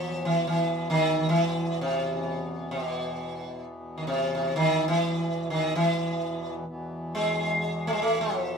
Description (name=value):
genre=indian classical, Hindustani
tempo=free time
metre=none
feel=none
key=E raga bhairav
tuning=A4 = 441 Hz
part: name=sitar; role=melody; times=0.0-8.6 s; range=B2 to A3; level=-25 LUFS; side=equal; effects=none
part: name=hand-pumped harmonium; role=drone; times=0.0-8.6 s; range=E2 to B2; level=-34 LUFS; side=left 1 dB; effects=none
room=wet studio reverb, RT60 0.6 s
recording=minimal, uncompressed stereo recording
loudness=-25 LUFS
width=side -6 dB against mid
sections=0.0-8.6 A section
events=none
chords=none